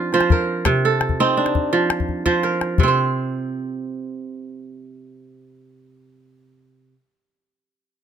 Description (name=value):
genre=west african traditional, West African string and xylophone music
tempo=113 BPM (dotted quarters)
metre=12/8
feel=straight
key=unclear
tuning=A4 = 440 Hz
part: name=kora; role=arpeggios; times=0.0-7.0 s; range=C3 to C5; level=-19 LUFS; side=right 3 dB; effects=none
part: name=calabash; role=percussion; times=0.1-3.0 s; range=none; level=-19 LUFS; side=left 4 dB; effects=none
room=little or no reverb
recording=close, detailed microphones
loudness=-17 LUFS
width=side -8 dB against mid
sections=0.0-2.8 A section; 2.8-7.0 B section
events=drum fill 2.1-2.8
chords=0.0 F5; 0.7 Cm; 1.7 F5; 2.8 N.C.